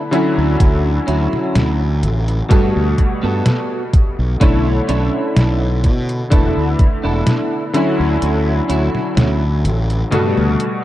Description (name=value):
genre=vaporwave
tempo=63 BPM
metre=4/4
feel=straight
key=unclear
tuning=A4 = 439 Hz
part: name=clear electric grand piano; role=accompaniment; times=0.0-10.8 s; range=B2 to C#5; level=-19 LUFS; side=left 2 dB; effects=ensemble chorus, tape echo
part: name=clean electric guitar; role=riff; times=0.1-10.5 s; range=B3 to A4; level=-23 LUFS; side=right 2 dB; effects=ensemble chorus, vintage 12-bit sampler grit, tape echo
part: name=detuned 8-bit digital drum machine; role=drums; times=0.1-10.8 s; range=hi-hat, snare drum, toms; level=-18 LUFS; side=equal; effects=overdrive
part: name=fuzz fingered electric bass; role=bass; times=0.4-10.5 s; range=E1 to B2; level=-17 LUFS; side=equal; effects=overdrive
part: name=electronic kick drum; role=drums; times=0.6-7.0 s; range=none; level=-13 LUFS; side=equal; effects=none
room=digital ambience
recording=dark, warm production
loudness=-13 LUFS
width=side -14 dB against mid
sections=0.0-10.8 A section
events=kick drops out 8.2-10.8; drum fill 10.1-10.8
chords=0.1 Dmaj9; 2.5 Gmaj9; 4.4 Bm11; 6.3 E7sus4; 7.7 Dmaj9; 10.1 Gmaj9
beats=| 0.60 1.55 2.51 3.46 | 4.41 5.37 6.32 7.27 | 8.22 9.17 10.13